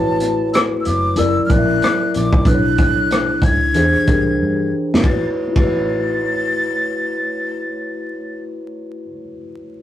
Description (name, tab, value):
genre	R&B, neo-soul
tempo	93 BPM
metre	4/4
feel	swing 61% on 16ths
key	A major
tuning	A4 = 442 Hz
part	breathy jazz flute	melody	0.0-8.4 s	A5 to A6	-21 LUFS	left 1 dB	none
part	mellow tine electric piano	accompaniment	0.0-9.8 s	B2 to E5	-20 LUFS	left 1 dB	slow stereo tremolo
part	vintage muted fingered electric bass	bass	0.0-9.1 s	F#1 to G2	-23 LUFS	equal	none
part	crunchy breakbeat drum kit	drums	0.2-5.7 s	hi-hat, kick drum, ride cymbal, rim click, snare drum	-18 LUFS	equal	none
room	moderate studio reverb, RT60 0.6 s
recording	rough rehearsal-room recording, tube saturation, vinyl crackle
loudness	-15 LUFS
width	side -12 dB against mid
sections	0.0-5.0 A section; 5.0-7.6 B section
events	drum fill 4.4-5.0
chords	0.0 A69; 1.2 F#7b13; 2.5 Bm11; 3.7 E7alt; 5.0 A69